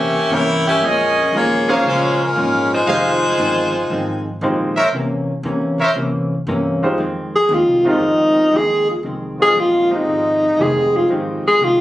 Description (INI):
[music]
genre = jazz, big band swing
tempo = 117 BPM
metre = 4/4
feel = swing 68% on 8ths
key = F minor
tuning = A4 = 439 Hz
[part]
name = bright saxophone section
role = melody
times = 0.0-4.2 s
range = Ab3 to G5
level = -16 LUFS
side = equal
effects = plate reverb
[part]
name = clear baby grand piano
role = accompaniment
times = 0.0-11.4 s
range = Ab3 to C5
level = -22 LUFS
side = right 1 dB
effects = none
[part]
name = hollow-body jazz guitar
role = accompaniment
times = 0.0-11.8 s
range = F2 to Db4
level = -23 LUFS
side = left 1 dB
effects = none
[part]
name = upright bass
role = bass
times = 0.0-11.8 s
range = F1 to Bb2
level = -28 LUFS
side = equal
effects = none
[part]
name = clear trumpet section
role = stabs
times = 1.7-5.9 s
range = Ab4 to F5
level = -17 LUFS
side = right 1 dB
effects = none
[part]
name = mellow alto saxophone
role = melody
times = 7.4-11.8 s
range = Eb4 to Ab4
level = -14 LUFS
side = equal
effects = plate reverb
[part]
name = clear trombone section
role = sustained chords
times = 7.8-11.4 s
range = Eb3 to Ab4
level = -24 LUFS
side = right 2 dB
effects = none
[sound]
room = moderate club reverb, RT60 0.6 s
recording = recorded on a phone in the room, studio ambience, compression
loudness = -14 LUFS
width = side -14 dB against mid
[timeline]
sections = 0.0-7.0 A section; 7.0-11.8 B section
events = alto saxophone solo 7.0-11.8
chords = 0.0 C7b9; 0.8 Bbm7; 2.9 Fm7; 4.9 C7b9; 7.0 Fm7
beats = 0.31 | 0.82 1.33 1.85 2.36 | 2.87 3.39 3.90 4.41 | 4.93 5.44 5.95 6.47 | 6.98 7.49 8.01 8.52 | 9.03 9.55 10.06 10.57 | 11.09 11.60